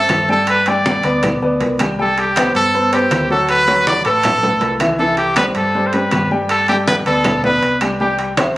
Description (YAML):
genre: latin, salsa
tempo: 160 BPM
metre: 4/4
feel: straight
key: G major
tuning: A4 = 441 Hz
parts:
  - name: bright trumpet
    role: melody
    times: 0.0-8.2 s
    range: G4 to D5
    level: -16 LUFS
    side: equal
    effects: none
  - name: clear upright piano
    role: accompaniment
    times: 0.0-8.6 s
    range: B2 to G5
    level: -18 LUFS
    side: left 1 dB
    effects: none
  - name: fingered electric bass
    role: bass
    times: 0.0-8.5 s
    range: A1 to G2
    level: -26 LUFS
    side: equal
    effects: none
  - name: claves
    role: percussion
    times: 0.1-8.6 s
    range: none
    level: -30 LUFS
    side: right 1 dB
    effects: none
  - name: congas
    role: percussion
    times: 0.1-8.6 s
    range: none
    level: -21 LUFS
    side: equal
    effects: none
  - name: timbales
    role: percussion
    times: 0.1-8.6 s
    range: none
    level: -25 LUFS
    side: right 4 dB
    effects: none
room: light reverb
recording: recorded on a phone in the room, studio ambience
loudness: -13 LUFS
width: side -16 dB against mid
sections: 0.0-8.6 A section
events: none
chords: 0.5 G; 2.0 C5; 3.5 D6; 5.0 C; 6.5 G; 8.0 C